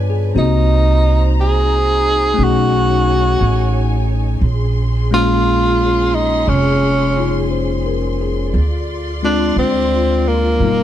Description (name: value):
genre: jazz ballad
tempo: 58 BPM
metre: 4/4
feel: swing 67% on 8ths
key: Bb minor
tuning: A4 = 440 Hz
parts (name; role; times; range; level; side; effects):
- bell-like tine electric piano; accompaniment; 0.0-10.8 s; B2 to D5; -20 LUFS; left 8 dB; none
- warm symphonic string section; sustained chords; 0.0-10.8 s; Db4 to C6; -25 LUFS; equal; none
- upright bass; bass; 0.0-10.8 s; F1 to G2; -16 LUFS; right 1 dB; none
- breathy tenor saxophone; melody; 0.4-10.8 s; Bb3 to Ab4; -16 LUFS; right 1 dB; none
room: little or no reverb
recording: dark, warm production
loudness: -13 LUFS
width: side -11 dB against mid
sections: 0.0-10.8 A section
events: none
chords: 0.3 Cm7b5; 2.4 B13; 4.4 Bbm9; 8.5 Dm7b5